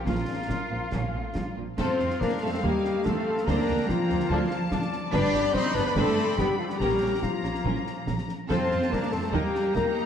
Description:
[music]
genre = cinematic, heroic adventure film score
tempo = 143 BPM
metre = 4/4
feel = straight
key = unclear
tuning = A4 = 440 Hz
[part]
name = warm symphonic violin section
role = melody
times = 0.0-10.1 s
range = F4 to B5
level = -36 LUFS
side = left 4 dB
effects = none
[part]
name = clear oboe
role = second line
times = 0.0-10.1 s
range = F4 to B5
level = -41 LUFS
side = right 1 dB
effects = none
[part]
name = hollow concert flute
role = second line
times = 0.0-10.1 s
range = F5 to D6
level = -39 LUFS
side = left 2 dB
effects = none
[part]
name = rich symphonic violin section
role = second line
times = 0.0-9.8 s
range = A4 to G5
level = -38 LUFS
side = left 3 dB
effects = none
[part]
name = warm symphonic viola section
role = accompaniment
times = 0.1-9.8 s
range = F3 to Eb4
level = -38 LUFS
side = right 1 dB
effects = none
[part]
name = warm French horn section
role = sustained chords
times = 0.1-10.1 s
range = F3 to D5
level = -30 LUFS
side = left 4 dB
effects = none
[part]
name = clear trumpet section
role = stabs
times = 0.1-10.1 s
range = A3 to G4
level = -36 LUFS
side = equal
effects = none
[part]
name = rich symphonic double bass section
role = bass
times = 0.1-9.8 s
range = G1 to F2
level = -32 LUFS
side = right 3 dB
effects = none
[part]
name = warm symphonic cello section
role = bass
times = 0.1-10.1 s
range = Bb2 to D4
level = -31 LUFS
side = right 2 dB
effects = none
[part]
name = concert snare drum, concert bass drum and clash cymbals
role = drums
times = 0.1-9.9 s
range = none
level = -32 LUFS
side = equal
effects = none
[part]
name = clear clarinet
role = second line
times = 1.8-10.1 s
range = F4 to D5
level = -36 LUFS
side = left 3 dB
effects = none
[sound]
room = moderate scoring stage reverb, RT60 2.0 s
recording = dark, warm production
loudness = -24 LUFS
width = side -8 dB against mid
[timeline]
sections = 0.0-1.8 A section; 1.8-10.1 B section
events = none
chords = 0.0 Bbmadd9; 1.8 F; 2.6 Ebadd9; 3.5 Bbadd9/D; 4.3 Dm; 5.1 G; 6.8 Bbm; 8.5 F; 9.3 Eb

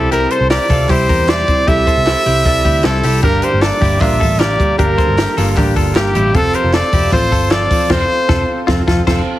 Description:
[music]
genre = jangly indie pop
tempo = 154 BPM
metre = 4/4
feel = straight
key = F major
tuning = A4 = 438 Hz
[part]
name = clear trumpet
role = melody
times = 0.0-8.7 s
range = G4 to E5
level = -16 LUFS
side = equal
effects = none
[part]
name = fingerpicked steel-string acoustic guitar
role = accompaniment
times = 0.0-9.2 s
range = G2 to A4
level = -21 LUFS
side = right 2 dB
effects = none
[part]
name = warm upright piano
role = accompaniment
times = 0.0-9.4 s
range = C4 to A5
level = -23 LUFS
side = right 4 dB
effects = none
[part]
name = direct-recorded clean electric guitar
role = arpeggios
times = 0.0-9.2 s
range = C4 to C5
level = -21 LUFS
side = left 6 dB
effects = none
[part]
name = vintage muted picked electric bass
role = bass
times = 0.0-9.2 s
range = F1 to E2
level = -18 LUFS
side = equal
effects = none
[part]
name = compact cocktail drum kit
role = drums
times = 0.1-9.2 s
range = crash cymbal, hi-hat, kick drum, snare drum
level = -17 LUFS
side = equal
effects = none
[part]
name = group handclap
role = percussion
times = 0.5-7.6 s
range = none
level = -31 LUFS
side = right 4 dB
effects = none
[sound]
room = moderate large studio reverb, RT60 1.1 s, studio reverb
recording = heavily compressed radio sound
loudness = -11 LUFS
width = side -14 dB against mid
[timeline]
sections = 0.0-9.4 A section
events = band accent 7.9-9.4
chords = 0.0 C; 3.2 Gm; 6.3 F

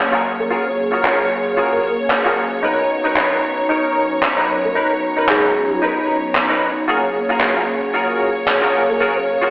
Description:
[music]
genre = nu-disco, nu disco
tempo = 113 BPM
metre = 4/4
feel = swing 55% on 16ths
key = F# major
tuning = A4 = 441 Hz
[part]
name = mellow synth brass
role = accompaniment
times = 0.0-9.5 s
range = F#3 to A#5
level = -21 LUFS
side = equal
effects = chorus, phaser, tape echo
[part]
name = warm studio string section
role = sustained chords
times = 0.0-9.5 s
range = C#5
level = -22 LUFS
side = equal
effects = low-pass filter
[part]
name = direct-recorded clean electric guitar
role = riff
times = 0.1-9.5 s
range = D#4 to C#5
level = -20 LUFS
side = equal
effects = ensemble chorus, low-pass filter, tape echo
[part]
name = soft octave-layered synth lead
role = melody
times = 0.4-9.3 s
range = G#4 to C#5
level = -23 LUFS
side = equal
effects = chorus, tremolo, digital delay
[part]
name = handclaps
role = drums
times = 1.1-8.6 s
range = none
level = -18 LUFS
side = equal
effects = low-pass filter on hats, low-pass filter on cymbals, low-pass filter on snare, low-pass filter on perc, low-pass filter on room
[sound]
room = wet lush hall reverb, RT60 1.9 s, studio ambience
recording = played on a big sound system in a bare room, stone room reverb, telephone sound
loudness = -14 LUFS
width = side -22 dB against mid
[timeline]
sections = 0.0-9.5 A section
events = none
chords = 0.0 F#maj9; 2.6 Bmaj7; 6.9 F#maj9

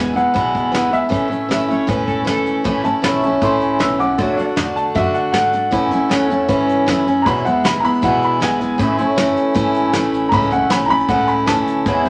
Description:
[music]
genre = honky-tonk and classic country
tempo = 156 BPM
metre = 4/4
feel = straight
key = A major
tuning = A4 = 439 Hz
[part]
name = clear upright piano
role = melody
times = 0.0-11.8 s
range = E5 to E6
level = -22 LUFS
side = equal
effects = none
[part]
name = picked steel-string acoustic guitar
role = accompaniment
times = 0.0-12.1 s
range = E2 to F#4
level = -20 LUFS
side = equal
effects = none
[part]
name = upright bass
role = bass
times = 0.0-12.1 s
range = E1 to A2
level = -34 LUFS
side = equal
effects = none
[part]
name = soft brush drum kit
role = drums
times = 0.2-12.1 s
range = hi-hat, kick drum, snare drum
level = -25 LUFS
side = equal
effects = none
[part]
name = clear fiddle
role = second line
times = 1.5-2.6 s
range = A4 to E5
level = -27 LUFS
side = equal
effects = none
[part]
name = pedal steel guitar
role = sustained chords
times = 3.0-12.1 s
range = G#4 to F#5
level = -26 LUFS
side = equal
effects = none
[sound]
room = moderate studio reverb, RT60 0.9 s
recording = none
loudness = -17 LUFS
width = mono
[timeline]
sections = 0.0-2.7 A section; 2.7-12.1 B section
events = upright piano solo 2.7-12.1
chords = 0.0 E; 1.1 A; 4.2 D; 5.7 A; 7.3 E; 8.8 A

